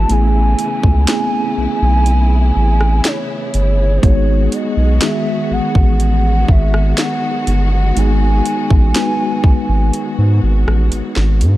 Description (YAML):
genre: contemporary R&B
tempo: 61 BPM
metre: 4/4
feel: straight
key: G# phrygian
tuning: A4 = 439 Hz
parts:
  - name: gliding portamento lead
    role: melody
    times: 0.0-11.4 s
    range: B#4 to A5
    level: -22 LUFS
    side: equal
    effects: chorus
  - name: mellow tine electric piano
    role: accompaniment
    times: 0.0-11.6 s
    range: D#3 to B4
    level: -20 LUFS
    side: left 1 dB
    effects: medium stereo tremolo
  - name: warm symphonic string section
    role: sustained chords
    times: 0.0-11.6 s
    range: C#3 to G#4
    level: -26 LUFS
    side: left 1 dB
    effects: sidechain pumping
  - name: saturated sub bass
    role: bass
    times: 0.0-11.6 s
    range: G1 to G#2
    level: -13 LUFS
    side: equal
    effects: none
  - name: trap drum kit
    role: drums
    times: 0.1-11.6 s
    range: hi-hat, kick drum, rim click, snare drum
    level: -15 LUFS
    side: equal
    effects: none
room: little or no reverb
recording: dark, warm production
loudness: -12 LUFS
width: side -16 dB against mid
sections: 0.0-11.6 A section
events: drum fill 10.9-11.6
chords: 0.1 Amaj7; 4.0 G#m7